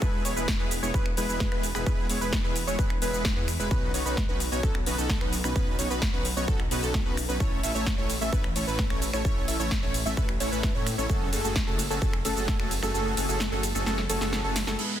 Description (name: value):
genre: EDM, festival progressive house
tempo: 130 BPM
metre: 4/4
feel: straight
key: unclear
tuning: A4 = 440 Hz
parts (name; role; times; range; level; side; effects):
- plucky unison lead; arpeggios; 0.0-14.8 s; A4 to E5; -33 LUFS; equal; vintage 12-bit sampler grit, sidechain pumping, dub echo
- dense compressed supersaw; riff; 0.0-15.0 s; G#3 to E5; -32 LUFS; right 1 dB; sidechain pumping, low-pass filter, dub echo
- wide detuned saw bass; bass; 0.0-14.8 s; E1 to A2; -32 LUFS; equal; chorus, sidechain pumping
- big-room dance drum kit; drums; 0.0-14.9 s; crash cymbal, finger snaps, hi-hat, ride cymbal, shaker, snare drum; -32 LUFS; equal; small room ambience
- electronic kick drum; drums; 0.0-12.6 s; none; -28 LUFS; equal; small room ambience
- downlifter; sound effects; 14.8-15.0 s; none; -32 LUFS; right 2 dB; none
room: light reverb, digital ambience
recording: dense, heavily limited modern master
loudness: -24 LUFS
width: side -11 dB against mid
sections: 0.0-14.8 A section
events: drop 0.0-14.8; kick drops out 12.9-14.8; drum fill 13.9-14.8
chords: 0.0 E; 3.7 Badd9; 7.4 A; 11.1 F#madd9